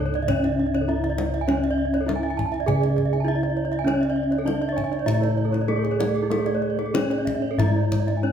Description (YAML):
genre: Balinese gamelan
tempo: 91-101 BPM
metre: 4/4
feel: straight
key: C# pelog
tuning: A4 = 438 Hz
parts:
  - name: gamelan-type bronze metallophone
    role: melody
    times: 0.0-8.3 s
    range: A3 to G#4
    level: -26 LUFS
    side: right 1 dB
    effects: none
  - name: overdriven tine electric piano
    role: second line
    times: 0.0-8.3 s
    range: C#4 to C#5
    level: -32 LUFS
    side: right 5 dB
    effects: medium tremolo
  - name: gamelan-type bronze metallophone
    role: arpeggios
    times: 0.0-8.2 s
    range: E4 to A5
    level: -29 LUFS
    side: right 9 dB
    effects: none
  - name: gamelan-type bossed gongs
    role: bass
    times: 0.0-8.3 s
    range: C#2 to A4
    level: -25 LUFS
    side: left 1 dB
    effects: none
  - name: gamelan-type bronze metallophone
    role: arpeggios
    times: 0.1-8.3 s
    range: A4 to G#5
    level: -30 LUFS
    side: left 3 dB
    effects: none
  - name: kendang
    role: percussion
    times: 0.1-8.2 s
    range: none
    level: -31 LUFS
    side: left 3 dB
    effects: none
room: moderate recital hall reverb, RT60 1.5 s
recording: none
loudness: -20 LUFS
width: side -8 dB against mid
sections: 0.0-8.3 A section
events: none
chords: none